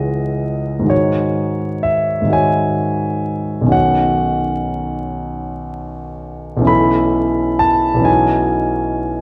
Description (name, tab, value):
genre	classical, impressionist solo piano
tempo	38-44 BPM (dotted quarters)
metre	6/8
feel	rubato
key	C# minor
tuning	A4 = 440 Hz
part	warm concert grand piano	solo	0.0-9.2 s	B1 to B5	-17 LUFS	equal	none
room	wet concert hall reverb, RT60 1.9 s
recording	vinyl crackle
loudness	-17 LUFS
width	mono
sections	0.0-9.2 A section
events	none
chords	0.0 C#madd9; 0.9 G#7sus4; 3.7 Badd9; 6.7 Aadd9/B; 8.1 C#m11/B